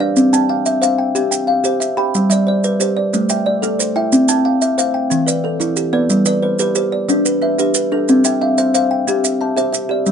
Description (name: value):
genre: southern african traditional, mbira-style interlocking cycle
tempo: 121 BPM (dotted quarters)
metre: 12/8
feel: straight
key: unclear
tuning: A4 = 440 Hz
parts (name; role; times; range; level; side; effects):
- kalimba; arpeggios; 0.0-10.1 s; E3 to A5; -15 LUFS; left 2 dB; none
- kalimba; arpeggios; 0.0-10.1 s; E3 to B5; -19 LUFS; right 4 dB; none
- maracas; percussion; 0.2-10.1 s; none; -21 LUFS; right 6 dB; none
room: light reverb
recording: nothing above 10.6 kHz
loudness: -13 LUFS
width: side -7 dB against mid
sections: 0.0-6.1 A section; 6.1-10.1 B section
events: none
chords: 0.2 C; 2.1 G; 3.1 Am; 4.1 C; 5.1 Em; 6.1 G; 8.1 C